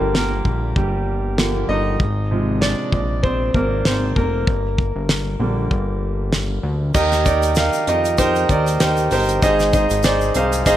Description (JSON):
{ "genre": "piano-driven pop", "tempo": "97 BPM", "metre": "4/4", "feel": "swing 56% on 16ths", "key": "unclear", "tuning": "A4 = 435 Hz", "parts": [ { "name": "clear grand piano", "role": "accompaniment", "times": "0.0-10.8 s", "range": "Ab2 to F5", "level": "-19 LUFS", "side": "right 1 dB", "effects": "none" }, { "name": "fat analog bass", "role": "bass", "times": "0.0-10.8 s", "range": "F1 to F2", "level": "-22 LUFS", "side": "left 1 dB", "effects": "none" }, { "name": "damped 70s drum kit", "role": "drums", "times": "0.1-10.8 s", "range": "crash cymbal, hi-hat, kick drum, snare drum", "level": "-21 LUFS", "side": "equal", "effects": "none" }, { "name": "tube shaker", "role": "percussion", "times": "7.0-10.8 s", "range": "none", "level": "-34 LUFS", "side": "left 9 dB", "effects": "none" } ], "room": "light reverb, studio ambience", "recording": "none", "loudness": "-16 LUFS", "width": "side -12 dB against mid", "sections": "0.0-7.0 A section; 7.0-10.8 B section", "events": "grand piano solo 0.0-7.0; grand piano fill 10.0-10.8", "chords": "0.0 Gm7; 2.0 Fm/Ab; 4.5 Gm; 7.0 Eb; 9.4 Ab", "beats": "0.15 0.77 1.38 | 2.00 2.62 3.24 3.86 | 4.48 5.09 5.71 6.33 | 6.95 7.57 8.19 8.81 | 9.42 10.04 10.66" }